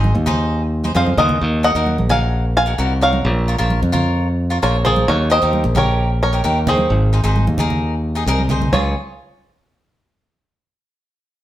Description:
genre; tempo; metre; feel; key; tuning
calypso; 131 BPM; 4/4; straight; Db major; A4 = 440 Hz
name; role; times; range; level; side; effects
cavaquinho; accompaniment; 0.0-8.9 s; Eb4 to Eb5; -23 LUFS; left 1 dB; none
modern bright fingered electric bass; bass; 0.0-8.9 s; Ab1 to F2; -17 LUFS; equal; none
congas; percussion; 0.0-8.9 s; none; -24 LUFS; right 2 dB; none
bluegrass banjo; melody; 1.0-8.9 s; Ab4 to Ab5; -18 LUFS; equal; none
room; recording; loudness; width
wet stone room reverb, RT60 1.0 s; band playing live in one room; -14 LUFS; side -13 dB against mid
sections
0.0-8.7 A section; 8.7-10.5 B section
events
drum fill 0.8-1.4, 8.4-8.7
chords
0.0 Ab; 1.4 Ebm; 3.2 Bbm; 5.1 Eb7; 6.9 Ab; 8.7 Db

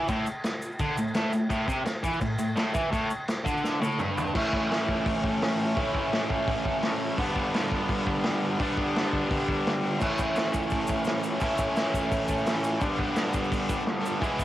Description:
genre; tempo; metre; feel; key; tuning
garage rock duo or trio; 170 BPM; 4/4; straight; A mixolydian from 4.3 s; A4 = 440 Hz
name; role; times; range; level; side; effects
overdriven electric guitar; riff; 0.0-14.4 s; G2 to E4; -26 LUFS; equal; cassette tape
vintage drum kit; drums; 0.1-14.4 s; crash cymbal, hi-hat, kick drum, snare drum, toms; -30 LUFS; equal; cassette tape
tube shaker; percussion; 0.1-4.3, 10.0-14.4 s; none; -48 LUFS; right 3 dB; none
room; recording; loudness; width
light reverb; home recording on cassette; -25 LUFS; side -14 dB against mid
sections
0.0-4.3 A section; 4.3-14.4 B section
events
drum fill 3.6-4.3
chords
0.0 A5; 4.3 A; 7.2 G; 10.0 A; 12.8 G

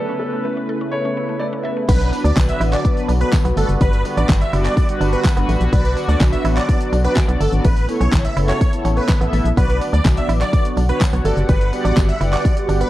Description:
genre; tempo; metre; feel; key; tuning
dance-pop; 125 BPM; 4/4; straight; B minor; A4 = 441 Hz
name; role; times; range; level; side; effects
warm concert grand piano; melody; 0.0-1.7 s; A4 to E5; -26 LUFS; right 1 dB; none
mellow synth brass; accompaniment; 0.0-12.9 s; F#3 to E5; -24 LUFS; right 1 dB; chorus, phaser, sidechain pumping
sweeping resonant pad; sustained chords; 0.0-12.9 s; C#3 to F#5; -27 LUFS; equal; chorus, sidechain pumping
mallet-like synth pluck; arpeggios; 0.0-1.9 s; A3 to A4; -32 LUFS; equal; chorus, phaser, sidechain pumping, ping-pong delay
supersaw chords; melody; 1.9-12.9 s; A4 to E5; -24 LUFS; equal; sidechain pumping, ping-pong delay
direct-recorded clean electric guitar; riff; 1.9-12.9 s; G3 to F#4; -28 LUFS; right 5 dB; lush chorus
organ-like FM bass; bass; 1.9-12.8 s; F#1 to D2; -18 LUFS; equal; sidechain pumping
pop drum kit; drums; 1.9-12.9 s; crash cymbal, handclaps, hi-hat, kick drum, shaker, snare drum; -17 LUFS; equal; none
tambourine; percussion; 1.9-12.9 s; none; -44 LUFS; left 6 dB; none
room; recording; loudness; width
light reverb, digital ambience; worn, warbling old tape, cassette tape, warbly pitch drift; -15 LUFS; side -15 dB against mid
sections
0.0-1.9 A section; 1.9-12.9 B section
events
drop 1.9-12.9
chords
0.0 Aadd9; 1.9 Bm; 3.6 Gmaj7; 5.7 Bm; 7.6 Aadd9; 9.6 Bm; 11.2 Gmaj7

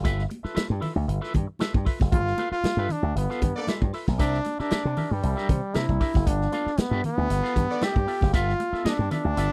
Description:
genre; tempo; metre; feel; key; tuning
funk; 116 BPM; 4/4; straight; G mixolydian; A4 = 441 Hz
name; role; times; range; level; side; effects
electric guitar with an envelope filter; accompaniment; 0.0-9.5 s; B3 to F5; -36 LUFS; equal; tremolo
slap bass with an envelope filter; bass; 0.0-9.5 s; F#1 to C3; -28 LUFS; equal; none
vintage drum kit; drums; 0.0-9.5 s; hi-hat, kick drum, snare drum; -28 LUFS; equal; none
congas; percussion; 0.1-9.2 s; none; -35 LUFS; equal; none
brilliant trombone; melody; 2.1-9.5 s; G3 to G4; -30 LUFS; equal; none
mellow horn section; second line; 3.6-3.7, 7.7-8.0 s; B3 to D5; -35 LUFS; equal; none
room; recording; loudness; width
little or no reverb; dry, close 1970s-style studio recording; -25 LUFS; mono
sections
0.0-9.5 A section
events
none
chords
0.0 G13; 4.2 C9; 6.3 G13

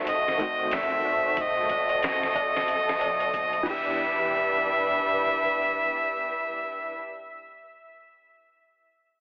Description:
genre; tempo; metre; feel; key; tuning
trip hop; 92 BPM; 4/4; swing 59% on 16ths; E minor; A4 = 439 Hz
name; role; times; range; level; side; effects
felt-muted upright piano; accompaniment; 0.0-7.1 s; D#3 to G4; -35 LUFS; equal; tremolo, tape echo
muted chamber violin section; sustained chords; 0.0-7.0 s; G3 to B4; -30 LUFS; equal; vintage 12-bit sampler grit
warm sub bass; bass; 0.0-5.9 s; D#1 to B1; -53 LUFS; equal; none
clear harmonica; melody; 0.1-7.1 s; D#5 to E5; -25 LUFS; equal; tape echo
trip hop sampler-style drum kit; drums; 0.1-3.8 s; crash cymbal, hi-hat, kick drum, snare drum; -34 LUFS; equal; small room ambience
tabla; percussion; 0.1-4.0 s; none; -37 LUFS; equal; none
room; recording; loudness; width
light reverb, small room ambience; heavily compressed radio sound, multiband compression, telephone sound; -23 LUFS; side -37 dB against mid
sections
0.0-4.0 A section; 4.0-6.6 B section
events
none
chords
0.0 B7b9/D#; 3.7 Em7

